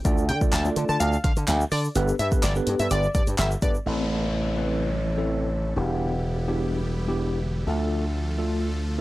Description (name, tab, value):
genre	dance-pop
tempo	126 BPM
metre	4/4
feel	straight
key	A minor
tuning	A4 = 440 Hz
part	tine electric piano	accompaniment	0.0-9.0 s	A3 to D5	-28 LUFS	equal	medium stereo tremolo
part	slap bass with an envelope filter	bass	0.1-9.0 s	E1 to D3	-25 LUFS	equal	transformer saturation, sidechain pumping
part	deep house drum kit	drums	0.1-3.7 s	handclaps, hi-hat, kick drum, snare drum	-24 LUFS	equal	none
part	egg shaker	percussion	0.1-3.9 s	none	-41 LUFS	right 1 dB	none
part	plucky unison lead	melody	0.3-3.7 s	D5 to A5	-29 LUFS	equal	analog delay
part	supersaw chords	sustained chords	3.9-9.0 s	C3 to A4	-34 LUFS	equal	phaser, sidechain pumping
part	downlifter	sound effects	3.9-7.7 s	none	-36 LUFS	left 1 dB	none
room	little or no reverb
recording	dry, gritty hardware recording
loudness	-22 LUFS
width	side -17 dB against mid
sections	0.0-3.9 A section; 3.9-9.0 B section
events	drop 0.0-3.9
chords	0.1 Dm; 2.0 Gadd9; 3.9 Am; 5.8 Em7; 7.7 Dm